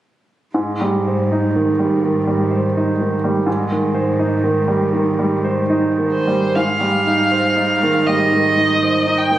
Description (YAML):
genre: cinematic, emotional film score for orchestra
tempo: 67-85 BPM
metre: 4/4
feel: rubato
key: Ab major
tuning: A4 = 439 Hz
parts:
  - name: bright grand piano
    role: accompaniment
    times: 0.5-9.4 s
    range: Ab2 to C5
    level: -16 LUFS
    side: right 2 dB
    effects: none
  - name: clear studio cello section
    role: bass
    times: 0.5-9.4 s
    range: Ab2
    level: -24 LUFS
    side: equal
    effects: none
  - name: warm violin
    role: melody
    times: 6.1-9.4 s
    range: C5 to G5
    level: -17 LUFS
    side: right 1 dB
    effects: none
room: moderate scoring stage reverb, RT60 2.0 s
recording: recorded on a phone in the room, club reverb, compression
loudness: -15 LUFS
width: side -13 dB against mid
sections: 0.5-6.5 A section; 6.5-9.4 B section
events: none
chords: 0.5 Abmaj7